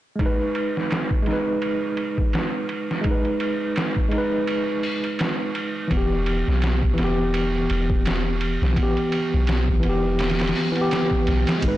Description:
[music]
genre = trip hop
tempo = 84 BPM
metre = 4/4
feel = swing 57% on 16ths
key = G# minor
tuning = A4 = 440 Hz
[part]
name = tine electric piano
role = accompaniment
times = 0.2-11.8 s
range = E3 to B4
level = -23 LUFS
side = equal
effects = tremolo, vintage 12-bit sampler grit, low-pass filter, tape echo
[part]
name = trip hop sampler-style drum kit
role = drums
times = 0.2-11.8 s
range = hi-hat, kick drum, ride cymbal, snare drum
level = -24 LUFS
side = equal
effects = low-pass filter on kick, low-pass filter on cymbals, low-pass filter on snare, low-pass filter on hats, low-pass filter on room
[part]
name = soft 808-style bass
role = bass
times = 5.9-11.8 s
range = E1 to B1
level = -23 LUFS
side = equal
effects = none
[sound]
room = light reverb, digital ambience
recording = blown-out, overdriven recording, overdrive, nothing above 10.8 kHz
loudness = -20 LUFS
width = side -14 dB against mid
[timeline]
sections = 0.2-11.6 A section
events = filter sweep on tine electric piano 0.2-11.6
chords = 0.2 G#m; 5.9 Em

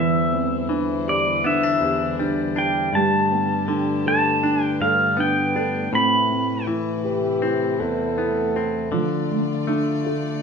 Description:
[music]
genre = acoustic folk-pop ballad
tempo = 80 BPM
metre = 4/4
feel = straight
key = C major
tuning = A4 = 441 Hz
[part]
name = pedal steel guitar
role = melody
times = 0.0-6.7 s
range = D5 to B5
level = -21 LUFS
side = left 1 dB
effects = none
[part]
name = direct-recorded clean electric guitar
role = accompaniment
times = 0.0-10.4 s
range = E2 to D4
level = -25 LUFS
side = left 4 dB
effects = none
[part]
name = warm chamber string section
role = sustained chords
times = 0.0-10.4 s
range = E2 to D5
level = -30 LUFS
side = right 2 dB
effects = none
[part]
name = felt-muted upright piano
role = arpeggios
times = 0.0-10.4 s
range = E3 to B4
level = -25 LUFS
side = right 3 dB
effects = none
[part]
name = warm French horn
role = second line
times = 6.7-9.3 s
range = E4 to A4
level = -24 LUFS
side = left 1 dB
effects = none
[sound]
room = moderate large studio reverb, RT60 0.9 s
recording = minimal, uncompressed stereo recording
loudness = -19 LUFS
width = side -5 dB against mid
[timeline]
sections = 0.0-10.4 A section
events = none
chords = 0.0 Cadd9/E; 2.9 Gadd9; 5.9 Amadd9; 8.9 Dm

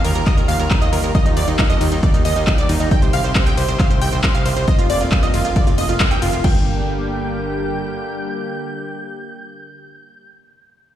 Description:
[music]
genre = uplifting trance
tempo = 136 BPM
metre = 4/4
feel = straight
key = G minor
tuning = A4 = 440 Hz
[part]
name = wide unison pluck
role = melody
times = 0.0-10.3 s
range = Eb4 to G5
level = -23 LUFS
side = right 1 dB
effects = auto-pan, sidechain pumping, dub echo
[part]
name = plucky unison lead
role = second line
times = 0.0-10.3 s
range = Eb5 to G6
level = -29 LUFS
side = right 1 dB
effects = sidechain pumping, dub echo
[part]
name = lush unison pad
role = sustained chords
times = 0.0-10.3 s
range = C3 to G4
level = -26 LUFS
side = equal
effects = chorus, sidechain pumping
[part]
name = plucky analog bass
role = bass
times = 0.0-7.7 s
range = F1 to F2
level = -21 LUFS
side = equal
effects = sidechain pumping
[part]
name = big-room dance drum kit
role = drums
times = 0.0-6.5 s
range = crash cymbal, handclaps, hi-hat, ride cymbal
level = -25 LUFS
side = equal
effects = none
[part]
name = electronic kick drum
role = drums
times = 0.3-6.5 s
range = none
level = -17 LUFS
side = equal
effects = none
[sound]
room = light reverb, digital ambience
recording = played on a big sound system in a bare room, stone room reverb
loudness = -15 LUFS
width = side -11 dB against mid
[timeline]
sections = 0.0-6.4 A section; 6.4-10.0 B section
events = drop 0.0-6.4; band accent 6.0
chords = 0.0 Ebadd9; 2.9 Cm; 4.7 Fsus4; 6.4 Gm

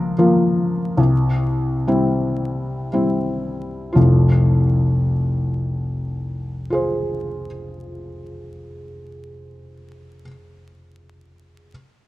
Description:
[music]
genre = classical, romantic nocturne for solo piano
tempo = 18-26 BPM (dotted quarters)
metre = 6/8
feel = rubato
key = F minor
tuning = A4 = 440 Hz
[part]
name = felt-muted upright piano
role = solo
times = 0.0-11.7 s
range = F1 to C5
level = -18 LUFS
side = left 1 dB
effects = none
[sound]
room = light reverb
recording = dark, warm production, vinyl crackle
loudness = -17 LUFS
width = side -16 dB against mid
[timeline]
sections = 0.0-3.9 A section; 3.9-9.5 B section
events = slowing down 0.0-3.9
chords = 0.0 Bbm/Db; 1.0 C7; 3.9 Fm

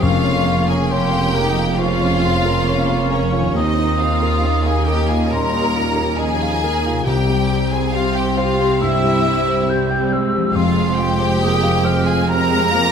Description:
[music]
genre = cinematic, emotional film score for orchestra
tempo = 68 BPM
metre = 4/4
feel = rubato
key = F minor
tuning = A4 = 440 Hz
[part]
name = clear studio violin section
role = melody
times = 0.0-12.9 s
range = Db5 to Bb5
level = -24 LUFS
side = left 2 dB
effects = none
[part]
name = clear studio violin section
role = second line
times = 0.0-12.9 s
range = Db4 to Bb4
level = -25 LUFS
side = left 1 dB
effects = none
[part]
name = mellow hollow silver concert flute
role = second line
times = 0.0-12.9 s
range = Bb5 to G6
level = -25 LUFS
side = equal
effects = none
[part]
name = clear concert grand piano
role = accompaniment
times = 0.0-12.9 s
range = C2 to G5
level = -23 LUFS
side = left 1 dB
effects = none
[part]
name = rich studio viola section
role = accompaniment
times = 0.0-12.9 s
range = Eb3 to G4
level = -25 LUFS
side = right 2 dB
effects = none
[part]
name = warm French horn section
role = sustained chords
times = 0.0-12.9 s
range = Db3 to G4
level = -26 LUFS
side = left 4 dB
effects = none
[part]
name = concert harp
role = arpeggios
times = 0.0-12.9 s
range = C3 to C5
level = -26 LUFS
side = left 7 dB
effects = none
[part]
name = clear studio cello section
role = bass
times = 0.0-12.9 s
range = C2 to F2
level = -24 LUFS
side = right 3 dB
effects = none
[part]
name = rich studio double bass section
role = bass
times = 0.0-12.9 s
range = F1 to Eb2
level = -22 LUFS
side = right 4 dB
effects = none
[part]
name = timpani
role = percussion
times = 0.0-1.3, 7.1-11.8 s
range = F2 to C3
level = -25 LUFS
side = left 2 dB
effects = none
[sound]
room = moderate scoring stage reverb, RT60 2.0 s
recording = none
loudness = -15 LUFS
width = side -7 dB against mid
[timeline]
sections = 0.0-12.9 A section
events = none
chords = 0.0 Bbm/F; 3.6 Ebsus2; 7.1 C; 10.6 Fmadd9

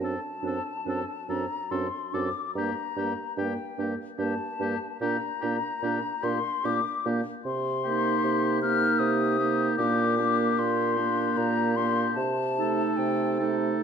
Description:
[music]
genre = classical, slow romantic movement for wind quintet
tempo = 67-78 BPM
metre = 3/4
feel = rubato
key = G minor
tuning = A4 = 441 Hz
[part]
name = mellow hollow silver concert flute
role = melody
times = 0.0-13.5 s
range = G5 to F6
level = -30 LUFS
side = left 8 dB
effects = none
[part]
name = warm oboe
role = second line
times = 0.0-13.8 s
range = G4 to A4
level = -34 LUFS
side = left 4 dB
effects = none
[part]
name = mellow French horn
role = accompaniment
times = 0.0-13.8 s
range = A3 to C4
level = -32 LUFS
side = right 1 dB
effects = none
[part]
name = mellow clarinet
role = accompaniment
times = 0.0-13.8 s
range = D4 to Eb4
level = -32 LUFS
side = right 7 dB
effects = none
[part]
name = dark bassoon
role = bass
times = 0.0-13.7 s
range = F#2 to C3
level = -31 LUFS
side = right 3 dB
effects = none
[sound]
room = wet recital hall reverb, RT60 1.5 s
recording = dark, warm production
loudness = -25 LUFS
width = side -7 dB against mid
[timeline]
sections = 0.0-13.8 A section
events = none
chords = 0.0 D7/F#; 2.6 Gm; 5.0 Gm/Bb; 7.5 Cm7; 9.8 Gm/Bb; 12.2 Adim/C

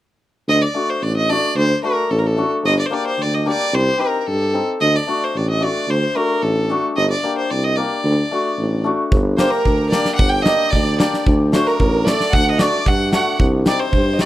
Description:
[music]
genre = klezmer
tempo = 111 BPM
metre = 2/4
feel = straight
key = D phrygian dominant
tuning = A4 = 441 Hz
[part]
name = rich violin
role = melody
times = 0.5-14.3 s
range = A4 to G5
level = -20 LUFS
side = equal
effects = none
[part]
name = warm tuba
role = bass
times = 0.5-14.2 s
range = G1 to G2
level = -19 LUFS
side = equal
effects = none
[part]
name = hammered dulcimer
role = accompaniment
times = 0.7-14.3 s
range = A3 to A4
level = -22 LUFS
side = left 4 dB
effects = none
[part]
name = huge arena drum kit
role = drums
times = 9.1-14.3 s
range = kick drum, snare drum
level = -18 LUFS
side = equal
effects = none
[part]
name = warm violin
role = second line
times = 9.4-14.3 s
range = Bb4 to G5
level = -23 LUFS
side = right 5 dB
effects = none
[sound]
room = studio reverb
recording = dry, close 1970s-style studio recording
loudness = -15 LUFS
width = side -14 dB against mid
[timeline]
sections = 0.5-9.1 A section; 9.1-14.3 B section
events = none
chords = 0.5 D; 2.6 Gm; 3.7 Cm; 4.8 D; 7.0 Gm; 8.0 D; 9.1 Gm; 11.3 D; 13.4 Cm

